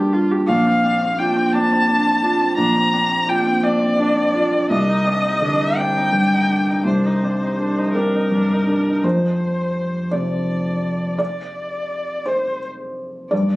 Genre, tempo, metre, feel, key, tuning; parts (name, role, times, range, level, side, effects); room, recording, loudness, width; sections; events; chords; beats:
neoclassical piano and strings; 56 BPM (dotted quarters); 6/8; rubato; A4 = 441 Hz
felt-muted upright piano; accompaniment; 0.0-13.6 s; Bb1 to D5; -18 LUFS; equal
muted viola; accompaniment; 0.0-9.1 s; C4 to G4; -28 LUFS; right 1 dB
muted violin; melody; 0.5-13.6 s; Bb4 to Bb5; -21 LUFS; left 1 dB
light reverb; recorded on a phone in the room, club reverb, compression; -16 LUFS; side -19 dB against mid
0.0-9.0 A section; 9.0-13.6 B section
0.5 Bbadd9; 4.7 Cmadd9; 9.0 F5
| 0.48 1.53 | 2.58 3.64 | 4.71 5.78 | 6.86 7.95 | 9.04 10.12 | 11.19 12.26 | 13.32